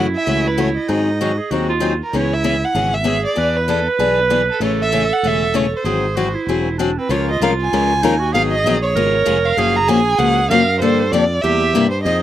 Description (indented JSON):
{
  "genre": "acoustic string swing (jazz manouche)",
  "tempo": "193 BPM",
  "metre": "4/4",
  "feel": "swing 59% on 8ths",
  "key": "Db major from 7.1 s",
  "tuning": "A4 = 440 Hz",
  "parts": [
    { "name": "warm violin", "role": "melody", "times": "0.0-12.2 s", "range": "A4 to Bb5", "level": "-20 LUFS", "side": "right 2 dB", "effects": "none" },
    { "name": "bright clarinet", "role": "second line", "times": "0.0-12.2 s", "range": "B#3 to B4", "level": "-20 LUFS", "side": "right 6 dB", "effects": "slapback echo" },
    { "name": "picked steel-string acoustic guitar", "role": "accompaniment", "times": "0.0-12.2 s", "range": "C3 to Bb4", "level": "-19 LUFS", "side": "left 6 dB", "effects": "none" },
    { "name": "modern bright fingered electric bass", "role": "bass", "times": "0.0-12.2 s", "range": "E1 to G#2", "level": "-22 LUFS", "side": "equal", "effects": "none" }
  ],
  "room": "little or no reverb",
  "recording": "recorded outdoors, with no room sound",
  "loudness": "-14 LUFS",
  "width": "side -12 dB against mid",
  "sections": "0.0-7.1 A section; 7.1-12.2 B section",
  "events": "none",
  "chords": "0.0 F#m7; 0.9 G#7; 2.1 C#m7; 3.4 E7; 4.6 Amaj7; 5.9 G#aug7; 7.1 Db69; 8.3 Abm7; 9.0 Db7; 9.6 Gbmaj7; 10.8 Gm7; 11.4 C7"
}